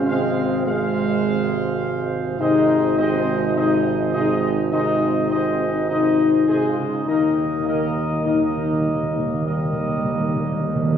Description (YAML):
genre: classical, ceremonial fanfare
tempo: 102 BPM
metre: 4/4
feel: straight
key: Ab major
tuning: A4 = 441 Hz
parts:
  - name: dark trumpet section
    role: melody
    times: 0.0-11.0 s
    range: Bb4 to F5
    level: -26 LUFS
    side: equal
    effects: none
  - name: clear trombone section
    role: sustained chords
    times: 0.0-11.0 s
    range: C3 to Bb3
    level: -27 LUFS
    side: right 2 dB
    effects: none
  - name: dark French horn section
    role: sustained chords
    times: 0.0-11.0 s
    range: G3 to Ab4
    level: -21 LUFS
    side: left 3 dB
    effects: none
  - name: warm tuba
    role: bass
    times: 0.0-11.0 s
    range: Ab1 to Eb2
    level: -25 LUFS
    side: right 4 dB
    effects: none
  - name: timpani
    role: percussion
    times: 7.1-11.0 s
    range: Eb3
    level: -25 LUFS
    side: right 1 dB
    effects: none
room: wet scoring stage reverb, RT60 1.8 s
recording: heard from further back in the room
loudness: -18 LUFS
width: side -8 dB against mid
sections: 0.0-11.0 A section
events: timpani fill 7.1-11.0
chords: 0.0 Fm/Ab; 2.4 Ab; 7.1 Eb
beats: | 0.09 0.66 1.24 1.82 | 2.39 2.97 3.55 4.13 | 4.72 5.31 5.89 6.48 | 7.07 7.66 8.24 8.85 | 9.45 10.07 10.68